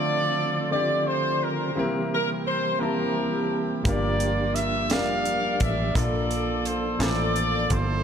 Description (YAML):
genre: slow gospel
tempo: 57 BPM (dotted quarters)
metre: 6/8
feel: straight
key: unclear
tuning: A4 = 444 Hz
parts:
  - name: mellow horn section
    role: melody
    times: 0.0-8.0 s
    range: E4 to F5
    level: -26 LUFS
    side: equal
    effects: none
  - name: warm grand piano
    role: accompaniment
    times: 0.0-8.0 s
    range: G2 to A5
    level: -30 LUFS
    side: left 2 dB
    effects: none
  - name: mellow tonewheel organ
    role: sustained chords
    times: 0.0-8.0 s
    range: D3 to A4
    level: -30 LUFS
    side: right 2 dB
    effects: slow rotary speaker, chorus vibrato
  - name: fingered electric bass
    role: bass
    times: 3.9-8.0 s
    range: F1 to Bb1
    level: -28 LUFS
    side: equal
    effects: none
  - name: crisp fusion drum kit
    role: drums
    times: 3.9-7.9 s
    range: hi-hat, kick drum, snare drum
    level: -29 LUFS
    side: equal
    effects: none
room: moderate concert hall reverb, RT60 2.4 s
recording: none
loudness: -22 LUFS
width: side -8 dB against mid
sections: 0.0-8.0 A section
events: none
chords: 0.0 Dm7; 1.8 C7; 3.9 Gm7; 6.0 Bbmaj7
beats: 0.70 | 1.75 2.80 | 3.85 4.90 | 5.95 7.00